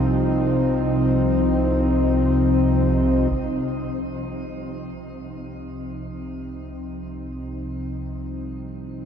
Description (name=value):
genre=dark ambient drone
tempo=free time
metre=none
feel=none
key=C minor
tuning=A4 = 439 Hz
part: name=sweeping resonant pad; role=sustained chords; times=0.0-9.1 s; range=F3 to Eb4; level=-23 LUFS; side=left 1 dB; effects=chorus, shimmer reverb
part: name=analog drone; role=drone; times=0.0-9.1 s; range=C2 to C3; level=-24 LUFS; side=equal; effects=chorus
part: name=taiko ensemble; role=percussion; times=3.3-3.5 s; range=none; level=-33 LUFS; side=right 1 dB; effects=low-pass filter on perc
room=wet huge ambient reverb, RT60 8.3 s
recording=dark, warm production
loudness=-19 LUFS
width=side -8 dB against mid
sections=0.0-3.3 A section; 3.3-9.1 B section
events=none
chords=0.0 Cm